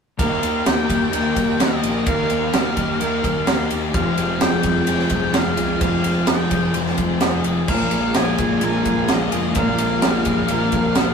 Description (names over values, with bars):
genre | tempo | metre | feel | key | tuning
rock, shoegaze and dream pop | 128 BPM | 4/4 | straight | unclear | A4 = 436 Hz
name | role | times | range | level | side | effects
octave-fuzz lead guitar | melody | 0.2-11.1 s | Eb5 to Ab5 | -27 LUFS | left 2 dB | distortion
string machine, violins | sustained chords | 0.2-11.1 s | Eb3 to G5 | -28 LUFS | equal | ensemble chorus
electric guitar through a small old amp | arpeggios | 0.2-11.1 s | G4 to C5 | -27 LUFS | right 2 dB | none
crunchy overdriven guitar | riff | 0.2-11.1 s | F2 to G4 | -27 LUFS | right 4 dB | none
thick fuzz guitar | riff | 0.2-11.1 s | F2 to Eb4 | -23 LUFS | left 4 dB | distortion
fuzz picked electric bass | bass | 0.2-11.1 s | F1 to Eb2 | -28 LUFS | right 1 dB | overdrive
big rock drum kit | drums | 0.2-11.1 s | crash cymbal, kick drum, ride cymbal, snare drum | -21 LUFS | right 1 dB | none
room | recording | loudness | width
moderate stone room reverb, RT60 1.4 s | rough rehearsal-room recording | -17 LUFS | side -6 dB against mid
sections
0.2-11.1 A section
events
none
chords
0.2 Ebadd9; 3.9 Fmadd9; 7.7 Bb7(no3)